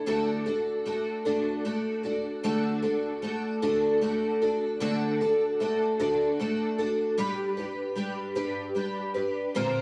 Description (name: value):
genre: rock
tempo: 51 BPM (dotted quarters)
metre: 6/8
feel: straight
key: D major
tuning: A4 = 442 Hz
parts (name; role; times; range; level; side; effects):
- picked twelve-string acoustic guitar; solo; 0.0-9.8 s; Bb2 to C5; -28 LUFS; equal; ensemble chorus, cassette tape, tape echo
room: light reverb, small room ambience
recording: home recording on cassette, studio ambience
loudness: -28 LUFS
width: mono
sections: 0.0-2.4 A section; 2.4-9.8 B section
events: none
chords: 0.1 D; 7.2 G